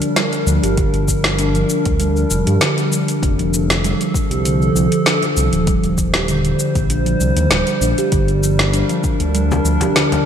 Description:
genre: organic downtempo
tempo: 98 BPM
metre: 4/4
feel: swing 53% on 16ths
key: G minor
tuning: A4 = 439 Hz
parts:
  - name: warbly tape-like pad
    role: sustained chords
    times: 0.0-10.3 s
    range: F3 to C5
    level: -21 LUFS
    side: right 1 dB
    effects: chorus, built-in reverb, sidechain pumping
  - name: steel tongue drum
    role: arpeggios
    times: 0.0-10.1 s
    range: D3 to G4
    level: -19 LUFS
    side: equal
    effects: ping-pong delay
  - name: afro-pop drum kit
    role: drums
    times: 0.0-10.2 s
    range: cabasa, hi-hat, snare drum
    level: -20 LUFS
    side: equal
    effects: gated reverb
  - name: smooth synth bass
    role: bass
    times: 0.5-9.8 s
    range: Eb1 to G2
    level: -19 LUFS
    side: equal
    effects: tube saturation, sidechain pumping
  - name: electronic kick drum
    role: drums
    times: 0.8-9.2 s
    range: none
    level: -20 LUFS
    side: equal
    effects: none
  - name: frame drum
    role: percussion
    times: 9.5-10.2 s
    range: none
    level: -22 LUFS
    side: left 3 dB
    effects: none
room: moderate lush hall reverb, RT60 2.8 s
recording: bright 1980s-style digital production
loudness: -14 LUFS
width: side -8 dB against mid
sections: 0.0-10.3 A section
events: none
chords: 0.0 Gm; 3.2 F; 5.7 Eb6; 8.1 Gm

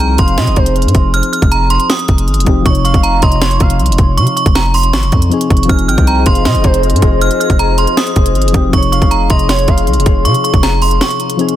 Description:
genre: hip hop, trap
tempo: 158 BPM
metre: 4/4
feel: half-time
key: F minor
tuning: A4 = 440 Hz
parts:
  - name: metallic FM bell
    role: melody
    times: 0.0-11.6 s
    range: Bb5 to F6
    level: -16 LUFS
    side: right 3 dB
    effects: chorus, tape echo
  - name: gliding portamento lead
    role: second line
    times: 0.0-9.9 s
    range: C5 to G5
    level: -23 LUFS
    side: right 4 dB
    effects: chorus, tape echo
  - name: soft electric-piano-like synth keys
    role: accompaniment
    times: 0.0-11.6 s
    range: C3 to Db5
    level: -18 LUFS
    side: left 4 dB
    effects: chorus
  - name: long sustained 808-style bass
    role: bass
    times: 0.0-11.0 s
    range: F1 to C3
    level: -14 LUFS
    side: equal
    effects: none
  - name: trap drum kit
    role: drums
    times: 0.0-11.6 s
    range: hi-hat, kick drum, snare drum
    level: -13 LUFS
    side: equal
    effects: none
  - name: breathy mellow small flute group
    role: sustained chords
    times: 5.7-11.6 s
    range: F4 to F5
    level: -19 LUFS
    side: left 5 dB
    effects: none
room: digital ambience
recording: dense, heavily limited modern master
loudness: -9 LUFS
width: side -12 dB against mid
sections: 0.0-11.6 A section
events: break 11.0-11.6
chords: 0.0 Fm7; 2.7 Dbmaj7/F; 5.7 Fm7; 8.7 Dbmaj7/F

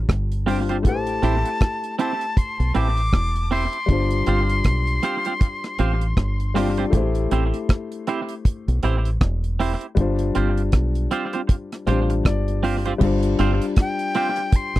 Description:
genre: lovers rock reggae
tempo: 79 BPM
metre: 4/4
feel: swing 59% on 16ths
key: unclear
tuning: A4 = 440 Hz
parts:
  - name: warm grand piano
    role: accompaniment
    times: 0.0-14.8 s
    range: G3 to D5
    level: -26 LUFS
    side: left 5 dB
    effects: none
  - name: deep dub fingered electric bass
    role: bass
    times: 0.0-14.8 s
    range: E1 to B1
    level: -22 LUFS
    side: equal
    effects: none
  - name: deep reggae drum kit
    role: drums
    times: 0.1-14.8 s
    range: crash cymbal, hi-hat, kick drum, rim click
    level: -19 LUFS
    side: equal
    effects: none
  - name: breathy bright jazz flute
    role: melody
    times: 0.5-6.6, 13.8-14.8 s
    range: G5 to D6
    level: -26 LUFS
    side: left 2 dB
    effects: tape echo
  - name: twangy electric guitar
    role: stabs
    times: 0.5-14.4 s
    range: C4 to C5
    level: -24 LUFS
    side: right 6 dB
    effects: wide subtle chorus, slapback echo
room: little or no reverb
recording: dry, close 1970s-style studio recording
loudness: -19 LUFS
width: side -16 dB against mid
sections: 0.0-13.0 A section; 13.0-14.8 B section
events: grand piano fill 11.9-13.0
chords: 0.0 G7sus4; 0.9 Am7; 3.9 G7sus4; 6.9 Am7; 10.0 G7sus4

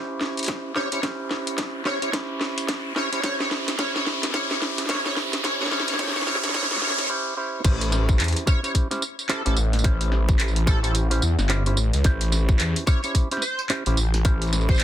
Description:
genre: glitch hop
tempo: 109 BPM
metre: 4/4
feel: swing 60% on 16ths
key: unclear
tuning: A4 = 440 Hz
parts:
  - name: electric guitar with an envelope filter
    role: stabs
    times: 0.0-14.8 s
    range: C#4 to C5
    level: -30 LUFS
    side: right 2 dB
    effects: vintage 12-bit sampler grit, sidechain pumping, ping-pong delay
  - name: riser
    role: sound effects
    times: 0.0-7.1 s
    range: none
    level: -29 LUFS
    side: equal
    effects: none
  - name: drum and bass drum kit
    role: drums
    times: 0.2-14.8 s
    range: crash cymbal, handclaps, hi-hat, snare drum, tambourine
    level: -27 LUFS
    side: equal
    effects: none
  - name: electronic kick drum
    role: drums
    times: 0.5-14.8 s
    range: none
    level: -21 LUFS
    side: equal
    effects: high-pass filter on kick, high-pass filter on room
  - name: sync lead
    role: melody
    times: 0.8-14.8 s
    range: A4 to C#5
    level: -30 LUFS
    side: equal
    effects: ensemble chorus, ping-pong delay
  - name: phased detuned saw bass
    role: bass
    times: 7.6-14.8 s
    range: G1 to E2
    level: -22 LUFS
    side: equal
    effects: phaser, overdrive
room: light reverb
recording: dense, heavily limited modern master, high-pass filter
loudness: -21 LUFS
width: side -11 dB against mid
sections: 0.0-7.6 A section; 7.6-14.8 B section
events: build-up 0.0-7.6; drum fill 0.0-7.1; riser 0.0-7.1; filter sweep 0.0-7.6; break 7.1-7.6; drop 7.6-14.8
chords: 0.0 C#dim; 7.6 A7#9

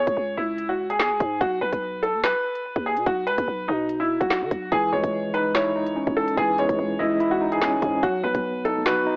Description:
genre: hip hop, drill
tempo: 145 BPM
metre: 4/4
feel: half-time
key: C# minor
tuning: A4 = 441 Hz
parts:
  - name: bright upright piano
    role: melody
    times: 0.0-9.2 s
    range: D#4 to C#5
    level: -23 LUFS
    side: equal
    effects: low-pass filter, cassette tape
  - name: growling 808-style bass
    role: bass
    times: 0.0-9.0 s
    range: B1 to D#3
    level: -31 LUFS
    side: equal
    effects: none
  - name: drill drum kit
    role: drums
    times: 0.1-9.0 s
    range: handclaps, hi-hat, kick drum, snare drum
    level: -26 LUFS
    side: equal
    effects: cassette tape
  - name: bright tine electric piano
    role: accompaniment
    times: 4.7-9.2 s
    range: E3 to D#5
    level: -24 LUFS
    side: equal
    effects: medium stereo tremolo, low-pass filter, cassette tape
room: light reverb, digital ambience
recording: home recording on cassette, AM radio sound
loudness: -21 LUFS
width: side -38 dB against mid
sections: 0.0-9.2 A section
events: break 0.0-4.7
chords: 0.0 C#m; 1.4 B; 4.7 C#madd9; 8.0 B

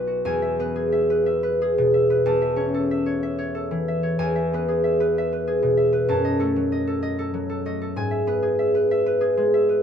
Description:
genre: classical, solo harp piece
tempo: 63 BPM (dotted quarters)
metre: 6/8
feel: rubato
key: E major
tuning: A4 = 441 Hz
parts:
  - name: concert harp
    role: solo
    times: 0.0-9.8 s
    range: B1 to A5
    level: -20 LUFS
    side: equal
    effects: none
room: moderate studio reverb, RT60 0.5 s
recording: minimal, uncompressed stereo recording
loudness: -20 LUFS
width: side -8 dB against mid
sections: 0.3-9.8 A section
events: none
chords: 0.3 E; 2.3 A/E; 4.2 E; 6.1 D#dim/F#; 8.0 E/G#

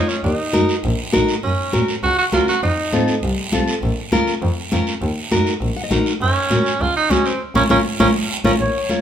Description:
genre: latin, cumbia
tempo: 201 BPM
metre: 4/4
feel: straight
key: Bb minor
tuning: A4 = 437 Hz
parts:
  - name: raspy tenor saxophone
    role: second line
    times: 0.0-3.2, 6.2-8.5 s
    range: C4 to Gb4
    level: -20 LUFS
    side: right 3 dB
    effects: none
  - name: nylon-string guitar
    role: accompaniment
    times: 0.0-9.0 s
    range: C4 to Gb5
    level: -20 LUFS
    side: left 2 dB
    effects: none
  - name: guiro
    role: percussion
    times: 0.1-9.0 s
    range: none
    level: -28 LUFS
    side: right 4 dB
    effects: none
  - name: rich double bass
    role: bass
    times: 0.2-8.7 s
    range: Bb1 to Bb2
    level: -22 LUFS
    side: equal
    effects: none
  - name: congas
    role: percussion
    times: 0.2-9.0 s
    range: none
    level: -24 LUFS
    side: right 1 dB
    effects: none
  - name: mellow accordion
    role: melody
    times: 8.6-9.0 s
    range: Db5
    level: -20 LUFS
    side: left 3 dB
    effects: none
room: moderate large studio reverb, RT60 1.1 s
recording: minimal, uncompressed stereo recording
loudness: -16 LUFS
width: side -9 dB against mid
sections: 0.0-8.6 A section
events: tenor saxophone solo 0.0-8.6; nylon-string guitar fill 5.6-6.2; band accent 7.4-8.6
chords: 0.2 Ebm; 1.4 Gb; 2.6 F7; 3.8 Bbm; 5.0 Ebm; 6.2 Gb; 7.4 Bbm

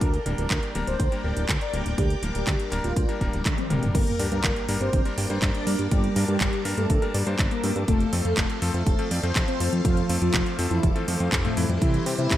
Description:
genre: italo disco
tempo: 122 BPM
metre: 4/4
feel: straight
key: G minor, G dorian from 3.9 s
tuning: A4 = 442 Hz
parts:
  - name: mellow synth brass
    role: melody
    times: 0.0-12.4 s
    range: A2 to D5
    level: -29 LUFS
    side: equal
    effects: chorus, tape echo, shimmer reverb
  - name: string machine, full ensemble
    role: sustained chords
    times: 0.0-12.4 s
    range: G4 to D6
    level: -34 LUFS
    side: equal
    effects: phaser, ensemble chorus, shimmer reverb
  - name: bright electric grand piano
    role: stabs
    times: 0.0-12.4 s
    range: E3 to D5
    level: -32 LUFS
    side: left 3 dB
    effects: shimmer reverb
  - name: fat analog bass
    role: bass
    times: 0.0-12.4 s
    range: D1 to C3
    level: -26 LUFS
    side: equal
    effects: none
  - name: electronic kick drum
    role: drums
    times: 0.0-12.4 s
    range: none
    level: -25 LUFS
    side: equal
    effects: none
  - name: house drum kit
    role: drums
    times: 0.0-12.4 s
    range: crash cymbal, handclaps, hi-hat, toms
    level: -29 LUFS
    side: right 1 dB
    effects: gated reverb
  - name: swell and sub drop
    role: sound effects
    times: 3.3-5.9 s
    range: none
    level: -36 LUFS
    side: equal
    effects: none
room: light reverb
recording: none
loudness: -22 LUFS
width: side -13 dB against mid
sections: 0.0-3.9 A section; 3.9-12.4 B section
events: swell 3.3-3.9; drum fill 3.5-3.9; band accent 3.5; impact 3.9-5.9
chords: 0.0 Gm/D; 3.9 Gm; 7.9 F; 11.8 C

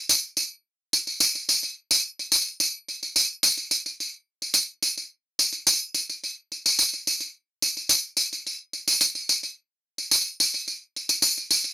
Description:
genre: rock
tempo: 108 BPM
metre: 4/4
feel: straight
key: none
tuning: none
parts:
  - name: tambourine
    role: percussion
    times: 0.1-11.7 s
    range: none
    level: -20 LUFS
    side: equal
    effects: none
room: little or no reverb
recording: dry, close 1970s-style studio recording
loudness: -21 LUFS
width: side -15 dB against mid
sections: 0.0-5.1 A section; 5.1-11.7 B section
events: none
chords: none

